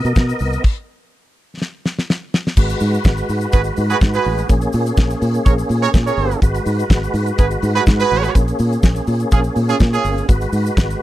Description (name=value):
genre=disco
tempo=124 BPM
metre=4/4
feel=straight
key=G# minor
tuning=A4 = 440 Hz
part: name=tonewheel organ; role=sustained chords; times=0.0-11.0 s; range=G#3 to D#5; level=-22 LUFS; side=equal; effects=chorus vibrato, fast rotary speaker
part: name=fingered electric bass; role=bass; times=0.0-10.9 s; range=G1 to B2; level=-19 LUFS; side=equal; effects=none
part: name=damped 70s drum kit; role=drums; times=0.0-11.0 s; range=crash cymbal, hi-hat, kick drum, snare drum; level=-14 LUFS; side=equal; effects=none
part: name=tube shaker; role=percussion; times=0.1-11.0 s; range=none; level=-40 LUFS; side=left 7 dB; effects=none
part: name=warm horn section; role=stabs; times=3.5-10.3 s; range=C#4 to C#5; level=-19 LUFS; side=right 7 dB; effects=none
room=small room ambience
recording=dry, close 1970s-style studio recording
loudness=-14 LUFS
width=side -14 dB against mid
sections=0.0-2.6 A section; 2.6-11.0 B section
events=stop 0.6-2.6; drum fill 1.6-2.6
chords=0.0 Bmaj7; 0.6 N.C.; 2.6 G#m7; 4.5 A#m7; 6.4 G#m7; 8.4 A#m7; 10.3 G#m7